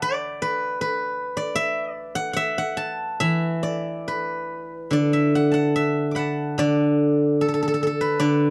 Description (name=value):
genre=chinese traditional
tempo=69-78 BPM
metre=2/4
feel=rubato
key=D gong mode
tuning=A4 = 440 Hz
part: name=steel-string zither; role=solo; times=0.0-8.5 s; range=D3 to D6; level=-23 LUFS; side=equal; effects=none
room=light reverb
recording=dark, warm production, faint mains hum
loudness=-23 LUFS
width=mono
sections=0.0-8.5 A section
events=none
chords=none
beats=| 0.03 0.82 | 1.59 2.40 | 3.24 4.08 | 4.94 5.78 | 6.60 7.42 | 8.23